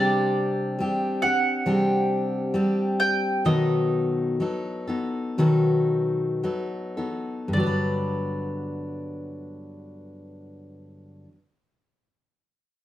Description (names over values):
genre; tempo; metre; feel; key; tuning
folk; 53-71 BPM; 4/4; straight; G major; A4 = 440 Hz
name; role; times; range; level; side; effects
mandolin; melody; 0.0-11.2 s; D5 to G5; -27 LUFS; right 2 dB; none
picked steel-string acoustic guitar; accompaniment; 0.0-11.4 s; G2 to B4; -23 LUFS; left 1 dB; none
room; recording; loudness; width
wet studio reverb, RT60 0.6 s; none; -22 LUFS; side -13 dB against mid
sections
0.0-7.5 A section; 7.5-12.1 B section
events
slowing down 0.0-7.5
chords
0.0 Csus2; 3.5 B7; 7.5 Gmaj7